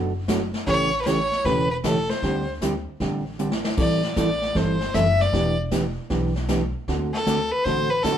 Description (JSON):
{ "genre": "country, western swing", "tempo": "155 BPM", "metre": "4/4", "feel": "swing 66% on 8ths", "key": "unclear", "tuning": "A4 = 443 Hz", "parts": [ { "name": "hollow-body jazz guitar", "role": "accompaniment", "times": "0.0-8.2 s", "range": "B2 to A4", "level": "-25 LUFS", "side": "right 2 dB", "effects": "none" }, { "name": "upright bass", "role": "bass", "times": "0.0-8.2 s", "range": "E1 to D2", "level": "-28 LUFS", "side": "equal", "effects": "none" }, { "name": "vintage brush drum kit", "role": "drums", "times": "0.3-8.2 s", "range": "brushed snare drum, crash cymbal, hi-hat, kick drum, snare drum", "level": "-29 LUFS", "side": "left 1 dB", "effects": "none" }, { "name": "clear fiddle", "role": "melody", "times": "0.7-8.2 s", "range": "A4 to E5", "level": "-23 LUFS", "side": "left 2 dB", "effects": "none" } ], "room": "moderate studio reverb, RT60 0.6 s", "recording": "band playing live in one room", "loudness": "-20 LUFS", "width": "side -9 dB against mid", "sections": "0.0-8.2 A section", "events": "drum fill 3.4-3.8", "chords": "0.0 Bm7; 0.7 A7; 2.2 D7sus4; 3.8 Am7; 5.3 Em7; 6.9 D7" }